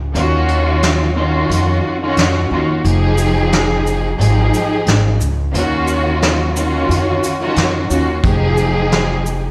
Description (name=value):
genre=hip hop, boom-bap hip-hop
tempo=89 BPM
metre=4/4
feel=swing 58% on 16ths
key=unclear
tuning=A4 = 442 Hz
part: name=upright bass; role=bass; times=0.0-9.5 s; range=F1 to F2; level=-19 LUFS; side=equal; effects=none
part: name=warm studio string section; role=accompaniment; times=0.1-9.5 s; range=Eb3 to Ab4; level=-19 LUFS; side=equal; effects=high-pass filter, low-pass filter
part: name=vintage brush drum kit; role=drums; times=0.2-9.4 s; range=hi-hat, kick drum, shaker, snare drum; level=-22 LUFS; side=equal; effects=none
room=light reverb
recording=played on a big sound system in a bare room, stone room reverb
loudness=-15 LUFS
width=mono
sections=0.0-9.5 A section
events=break 0.0-8.2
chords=0.1 Ebm9; 2.8 Fm9; 5.5 Ebm9; 8.2 Fm9